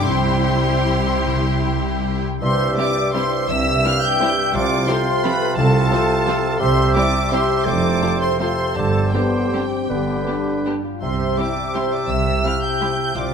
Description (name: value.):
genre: classical, orchestral ballroom waltz.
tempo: 147-187 BPM.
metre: 3/4.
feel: rubato.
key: C major.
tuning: A4 = 441 Hz.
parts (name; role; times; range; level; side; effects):
warm studio violin section; melody; 0.0-13.3 s; G5 to G6; -25 LUFS; equal; none.
rich studio violin section; second line; 0.0-12.9 s; D4 to G5; -29 LUFS; left 1 dB; none.
warm studio viola section; accompaniment; 0.0-12.9 s; F3 to E4; -29 LUFS; right 1 dB; none.
mellow French horn section; sustained chords; 0.0-12.9 s; A3 to F4; -28 LUFS; left 3 dB; none.
concert harp; arpeggios; 0.0-13.3 s; F2 to A4; -27 LUFS; left 8 dB; none.
warm chamber cello section; bass; 0.0-13.3 s; C2 to E4; -28 LUFS; right 2 dB; none.
warm studio double bass section; bass; 0.0-13.3 s; F1 to C2; -24 LUFS; right 4 dB; none.
mellow hollow flute section; second line; 2.4-13.3 s; G4 to G5; -25 LUFS; equal; none.
warm clarinet; second line; 2.4-13.3 s; F4 to A4; -28 LUFS; left 3 dB; none.
warm oboe; second line; 2.4-13.3 s; B4 to F5; -26 LUFS; right 2 dB; none.
warm bassoon; accompaniment; 2.4-13.3 s; G2 to D3; -26 LUFS; right 3 dB; none.
room: moderate scoring stage reverb, RT60 1.6 s.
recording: none.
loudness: -16 LUFS.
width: side -6 dB against mid.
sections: 0.0-2.4 A section; 2.4-13.3 A section.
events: none.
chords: 0.1 C; 4.5 F/C; 6.6 C; 7.7 F; 8.8 Gsus4; 9.9 G; 11.0 C.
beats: | 0.08 0.47 0.88 | 1.26 1.65 2.05 | 2.42 2.77 3.14 | 3.49 3.84 4.21 | 4.54 4.88 5.24 | 5.57 5.91 6.26 | 6.60 6.96 7.32 | 7.66 8.02 8.39 | 8.76 9.13 9.52 | 9.89 10.26 10.65 | 11.02 11.38 11.75 | 12.09 12.44 12.81 | 13.15.